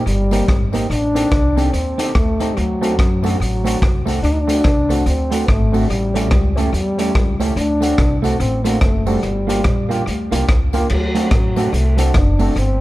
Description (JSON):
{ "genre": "ska", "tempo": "144 BPM", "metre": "4/4", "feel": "swing 61% on 8ths", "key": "unclear", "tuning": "A4 = 440 Hz", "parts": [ { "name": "electric guitar at the edge of break-up", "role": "accompaniment", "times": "0.0-12.5 s", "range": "A3 to G4", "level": "-23 LUFS", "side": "right 4 dB", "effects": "tape echo" }, { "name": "warm upright piano", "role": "stabs", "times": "0.0-12.5 s", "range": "Bb3 to Bb4", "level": "-27 LUFS", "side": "left 2 dB", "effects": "tube saturation, tape echo" }, { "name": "dark trombone", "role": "melody", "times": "0.1-12.8 s", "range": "F#3 to Eb4", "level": "-21 LUFS", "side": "left 1 dB", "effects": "none" }, { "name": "upright bass", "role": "bass", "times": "0.1-12.8 s", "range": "F#1 to F#2", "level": "-19 LUFS", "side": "equal", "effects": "none" }, { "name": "raw garage drum kit", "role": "drums", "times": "0.1-12.7 s", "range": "crash cymbal, hi-hat, kick drum, rim click", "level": "-19 LUFS", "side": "equal", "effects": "none" }, { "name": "tambourine", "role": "percussion", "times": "0.3-12.5 s", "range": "none", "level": "-43 LUFS", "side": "left 5 dB", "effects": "none" } ], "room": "light reverb", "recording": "dark, warm production", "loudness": "-14 LUFS", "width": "side -17 dB against mid", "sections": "0.0-10.9 A section; 10.9-12.8 B section", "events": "none", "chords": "0.0 Cm7; 0.9 Am7b5; 2.6 D7; 5.9 A7; 7.6 D7; 9.2 Gm7; 10.9 D7", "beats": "0.06 0.48 | 0.90 1.31 1.73 2.15 | 2.57 2.98 3.40 3.82 | 4.24 4.65 5.07 5.49 | 5.90 6.32 6.74 7.15 | 7.57 7.99 8.40 8.82 | 9.24 9.65 10.07 10.49 | 10.90 11.32 11.74 12.15 | 12.57" }